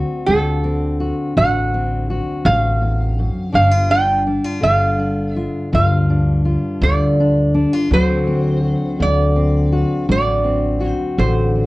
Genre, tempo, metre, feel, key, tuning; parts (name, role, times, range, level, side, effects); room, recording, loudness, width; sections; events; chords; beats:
acoustic country blues, solo or duo; 55 BPM (dotted quarters); 12/8; straight; D mixolydian; A4 = 436 Hz
fingerpicked steel-string acoustic guitar; accompaniment; 0.0-11.7 s; D2 to F#4; -20 LUFS; left 1 dB
upright bass; bass; 0.0-11.7 s; G1 to D2; -18 LUFS; equal
lap resonator guitar; melody; 0.3-11.7 s; A4 to G5; -19 LUFS; right 2 dB
light reverb; worn, warbling old tape, cassette tape, warbly pitch drift; -15 LUFS; side -19 dB against mid
0.0-11.7 A section
0.0 D7; 3.6 G5; 7.9 D7
0.29 1.38 2.47 | 3.56 4.65 5.74 6.83 | 7.92 9.01 10.10 11.19